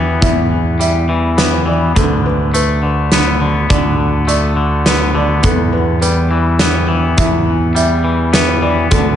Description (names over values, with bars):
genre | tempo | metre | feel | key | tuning
post-rock | 104 BPM | 3/4 | straight | E minor | A4 = 440 Hz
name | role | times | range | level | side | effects
twangy electric guitar | arpeggios | 0.0-9.2 s | E2 to B3 | -17 LUFS | left 3 dB | digital delay
modern bright picked electric bass | bass | 0.0-9.2 s | D2 to E2 | -16 LUFS | right 1 dB | none
felt-muted upright piano | arpeggios | 0.2-9.2 s | A4 to E5 | -22 LUFS | right 2 dB | digital delay
big rock drum kit | drums | 0.2-9.0 s | hi-hat, kick drum, snare drum | -16 LUFS | right 1 dB | none
room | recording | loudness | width
light reverb, small room ambience | nothing above 10.7 kHz | -11 LUFS | side -10 dB against mid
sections
0.0-9.2 A section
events
none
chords
0.0 Em; 2.0 Bm7/D; 5.4 Em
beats
| 0.22 0.80 1.38 | 1.96 2.54 3.12 | 3.70 4.28 4.86 | 5.44 6.02 6.60 | 7.18 7.76 8.34 | 8.91